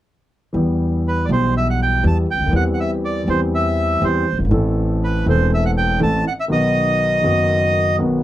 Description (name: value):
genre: tango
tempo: 121 BPM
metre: 4/4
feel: rubato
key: E minor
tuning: A4 = 438 Hz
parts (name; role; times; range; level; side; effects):
- dark concert grand piano; accompaniment; 0.5-8.2 s; E1 to A4; -18 LUFS; left 1 dB; none
- upright bass; bass; 0.5-6.2 s; E1 to E2; -21 LUFS; equal; none
- bandoneon; melody; 1.1-8.0 s; B4 to A5; -20 LUFS; right 1 dB; none
room: light reverb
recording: dry, close 1970s-style studio recording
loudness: -16 LUFS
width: side -13 dB against mid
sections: 0.6-8.2 A section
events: none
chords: 0.6 Em; 2.5 C/E; 4.5 Am; 6.5 B